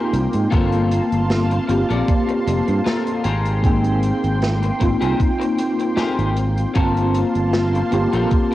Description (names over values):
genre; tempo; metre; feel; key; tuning
vaporwave; 77 BPM; 4/4; swing 54% on 16ths; G minor; A4 = 441 Hz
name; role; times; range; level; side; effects
mellow tine electric piano; accompaniment; 0.0-8.5 s; Bb3 to A5; -20 LUFS; equal; medium stereo tremolo, lush chorus, cassette tape, analog delay
lush unison pad; sustained chords; 0.0-8.5 s; Bb3 to C6; -28 LUFS; right 1 dB; chorus, phaser, cassette tape
electric guitar at the edge of break-up; riff; 0.0-8.5 s; F4 to D5; -27 LUFS; left 4 dB; lush chorus, cassette tape, analog delay
overdriven fingered electric bass; bass; 0.1-8.2 s; F1 to Ab2; -20 LUFS; equal; tube saturation
swinging big-band drum kit; drums; 0.1-8.5 s; hi-hat, snare drum; -28 LUFS; equal; studio ambience, cassette tape
electronic kick drum; drums; 0.5-8.5 s; none; -19 LUFS; equal; studio ambience, cassette tape
room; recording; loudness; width
light reverb, small room ambience; home recording on cassette; -16 LUFS; side -15 dB against mid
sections
0.0-8.5 A section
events
none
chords
0.0 Abmaj9; 0.5 Gm11; 3.2 Abmaj9; 6.8 Gm11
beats
| 0.52 1.30 2.08 2.86 | 3.64 4.42 5.20 5.98 | 6.76 7.54 8.31